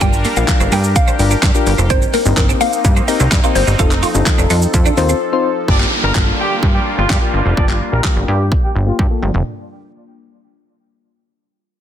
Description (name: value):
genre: dance-pop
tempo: 127 BPM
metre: 4/4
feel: straight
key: G minor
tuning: A4 = 440 Hz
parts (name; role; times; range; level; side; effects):
- mallet-like synth pluck; melody; 0.0-4.2 s; A4 to G5; -20 LUFS; left 2 dB; chorus, phaser, ping-pong delay
- soft electric-piano-like synth keys; accompaniment; 0.0-9.3 s; Bb3 to C5; -21 LUFS; left 7 dB; chorus, sidechain pumping, low-pass filter
- sweeping resonant pad; sustained chords; 0.0-9.4 s; F3 to Bb4; -24 LUFS; equal; chorus, sidechain pumping, low-pass filter
- twelve-string electric guitar; riff; 0.0-5.2 s; G3 to F4; -23 LUFS; right 7 dB; ensemble chorus
- plucky analog bass; bass; 0.0-9.4 s; F1 to G2; -16 LUFS; equal; sidechain pumping
- pop drum kit; drums; 0.0-9.5 s; handclaps, hi-hat, kick drum, shaker, snare drum, toms; -16 LUFS; equal; none
- warm horn section; melody; 5.7-9.3 s; F3 to D5; -22 LUFS; right 1 dB; sidechain pumping, low-pass filter, ping-pong delay
- downlifter; sound effects; 5.7-9.5 s; none; -23 LUFS; right 1 dB; none
room: light reverb, digital ambience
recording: dense, heavily limited modern master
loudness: -12 LUFS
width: side -10 dB against mid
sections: 0.0-5.7 A section; 5.7-9.5 B section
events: break 5.2-5.7; filter sweep 5.7-9.5; drum fill 9.0-9.5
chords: 0.0 Gm7; 1.9 Cm7/G; 3.8 F7; 5.7 Gm7